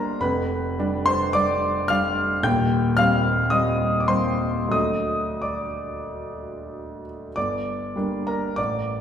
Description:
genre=classical, romantic character piece for solo piano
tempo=86-116 BPM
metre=4/4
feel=rubato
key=G minor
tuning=A4 = 440 Hz
part: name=warm concert grand piano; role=solo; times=0.0-9.0 s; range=Eb1 to G6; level=-21 LUFS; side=equal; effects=none
room=wet recital hall reverb, RT60 1.6 s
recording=recorded in a church or concert hall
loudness=-20 LUFS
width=side -8 dB against mid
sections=0.0-9.0 A section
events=none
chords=0.2 G7/F; 2.4 Cm/Eb; 4.7 D; 7.4 Gm

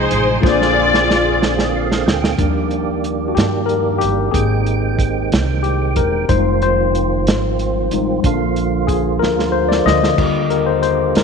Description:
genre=slow gospel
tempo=62 BPM (dotted quarters)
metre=6/8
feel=straight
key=Eb major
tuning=A4 = 440 Hz
part: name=muted studio string section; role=melody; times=0.0-1.7 s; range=Eb4 to D5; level=-16 LUFS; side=left 2 dB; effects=none
part: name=tine electric piano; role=accompaniment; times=0.0-11.2 s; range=Bb2 to G5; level=-18 LUFS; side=left 11 dB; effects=medium stereo tremolo
part: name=percussive tonewheel organ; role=sustained chords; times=0.0-11.2 s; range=D3 to G5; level=-21 LUFS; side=right 10 dB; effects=overdrive, chorus vibrato, slow rotary speaker
part: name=upright bass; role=bass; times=0.0-11.2 s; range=Fb1 to G2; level=-21 LUFS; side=right 2 dB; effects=none
part: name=warm soul drum kit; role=drums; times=0.1-11.2 s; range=crash cymbal, hi-hat, kick drum, snare drum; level=-20 LUFS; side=right 2 dB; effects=none
room=moderate echo chamber reverb, RT60 2.4 s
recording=1960s-style stereo with parts hard left and right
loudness=-14 LUFS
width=side -5 dB against mid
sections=0.0-2.4 A section; 2.4-11.2 B section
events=drum fill 0.4-2.4, 9.2-10.2; tonewheel organ fill 1.4-2.4; tine electric piano solo 2.4-11.2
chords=0.4 Bb9; 2.4 Ebmaj7; 4.3 Abmaj7; 6.3 Fm7; 8.2 Bb; 10.2 Ebmaj7

